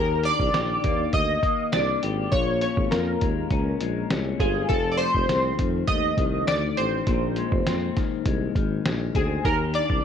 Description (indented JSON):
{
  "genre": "indie pop, bedroom pop",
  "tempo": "101 BPM",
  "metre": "4/4",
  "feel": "straight",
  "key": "Eb major",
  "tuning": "A4 = 440 Hz",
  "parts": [
    { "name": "chorused retro synth keys", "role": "melody", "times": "0.0-10.0 s", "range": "Ab4 to Eb5", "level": "-25 LUFS", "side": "right 1 dB", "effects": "ensemble chorus, slapback echo" },
    { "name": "electric guitar through a small old amp", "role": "accompaniment", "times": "0.0-10.0 s", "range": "F2 to G4", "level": "-29 LUFS", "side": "left 12 dB", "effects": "wide subtle chorus, warbly pitch drift" },
    { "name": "mellow tuba", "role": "bass", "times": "0.0-10.0 s", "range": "F1 to F2", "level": "-27 LUFS", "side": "right 1 dB", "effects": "none" },
    { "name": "lo-fi sampler-style drum kit", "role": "drums", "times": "0.2-10.0 s", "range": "hi-hat, kick drum, snare drum", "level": "-27 LUFS", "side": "equal", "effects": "none" }
  ],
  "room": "light reverb",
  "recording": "1960s-style stereo",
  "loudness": "-21 LUFS",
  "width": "side -8 dB against mid",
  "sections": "0.0-10.0 A section",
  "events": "none",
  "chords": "0.0 Ebmaj7; 2.3 Bbm7; 4.7 F7; 7.1 Bb9sus4; 9.4 Ebmaj7"
}